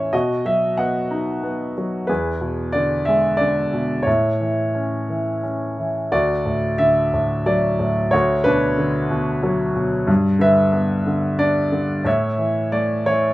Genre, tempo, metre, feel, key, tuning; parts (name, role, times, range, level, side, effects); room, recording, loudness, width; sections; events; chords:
classical, lyrical solo piano; 91 BPM; 3/4; rubato; A major, D major from 6.1 s; A4 = 440 Hz
clear grand piano; solo; 0.0-13.3 s; D2 to F#5; -17 LUFS; equal
light reverb; -17 LUFS; side -17 dB against mid
0.0-6.1 A section; 6.1-13.3 B section
0.1 B; 2.1 E7; 4.1 A; 6.1 D; 8.1 Bm/D; 10.1 G; 12.1 A